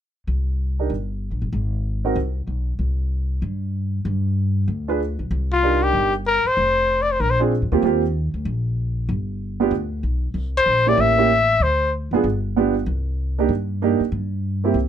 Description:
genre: jazz, small-group swing and bop.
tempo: 191 BPM.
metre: 4/4.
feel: swing 61% on 8ths.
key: C minor.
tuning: A4 = 440 Hz.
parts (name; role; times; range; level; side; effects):
upright bass; bass; 0.3-14.9 s; F1 to G2; -23 LUFS; left 1 dB; none.
warm concert grand piano; accompaniment; 0.8-2.2, 4.9-14.8 s; Bb3 to B4; -20 LUFS; right 6 dB; none.
clear trumpet; melody; 5.5-7.4, 10.6-11.9 s; F4 to E5; -17 LUFS; left 3 dB; none.
room: light reverb.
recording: none.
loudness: -19 LUFS.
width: side -9 dB against mid.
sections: 0.3-5.3 A section; 5.3-14.9 B section.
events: none.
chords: 0.3 C7(no3); 1.5 Ab; 2.8 C5; 4.1 G; 5.3 Cm9; 6.6 F5; 7.2 Bb7; 7.8 Eb6; 9.1 G; 10.4 C5; 11.0 A7b9; 11.6 Dm7b5; 12.2 G7; 12.9 Cm9; 14.1 Gmadd11.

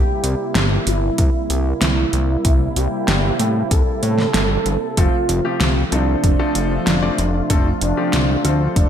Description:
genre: synthwave.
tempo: 95 BPM.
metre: 4/4.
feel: straight.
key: F major.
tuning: A4 = 442 Hz.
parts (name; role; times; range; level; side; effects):
expressive portamento lead; melody; 0.0-8.9 s; D4 to A4; -23 LUFS; right 2 dB; lush chorus, ping-pong delay.
warm analog pad; sustained chords; 0.0-8.9 s; C3 to F4; -25 LUFS; right 1 dB; chorus, sidechain pumping.
fat analog bass; bass; 0.0-8.9 s; F1 to A2; -19 LUFS; equal; tube saturation.
pop drum kit; drums; 0.2-8.9 s; hi-hat, snare drum; -21 LUFS; equal; small room ambience, gated reverb.
electronic kick drum; drums; 1.2-8.9 s; none; -17 LUFS; equal; small room ambience.
clear grand piano; stabs; 5.0-8.9 s; F3 to D5; -25 LUFS; left 4 dB; none.
room: light reverb.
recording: bright 1980s-style digital production.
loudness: -15 LUFS.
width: side -9 dB against mid.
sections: 0.0-8.9 A section.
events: none.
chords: 0.0 C7; 5.0 F.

